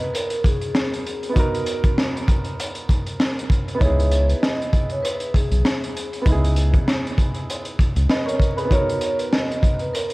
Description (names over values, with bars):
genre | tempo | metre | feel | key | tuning
hip hop, boom-bap hip-hop | 98 BPM | 4/4 | swing 56% on 16ths | G# minor | A4 = 440 Hz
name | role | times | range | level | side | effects
vibraphone with soft mallets | melody | 0.0-10.1 s | G#4 to D#5 | -26 LUFS | equal | high-pass filter, low-pass filter, tape echo
dark upright piano | accompaniment | 0.0-10.1 s | B3 to D#5 | -28 LUFS | right 2 dB | cassette tape, high-pass filter, low-pass filter, tape echo
crunchy breakbeat drum kit | drums | 0.1-10.1 s | hi-hat, kick drum, snare drum | -20 LUFS | equal | vintage 12-bit sampler grit
round analog bass | bass | 3.8-8.1 s | B1 to C#2 | -18 LUFS | equal | none
room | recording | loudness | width
light reverb, studio reverb | echo-heavy mix, vinyl crackle | -18 LUFS | side -22 dB against mid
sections
0.0-10.1 A section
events
break 0.0-3.8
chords
0.0 G#m9; 3.8 C#m7; 8.7 G#m9 (rootless)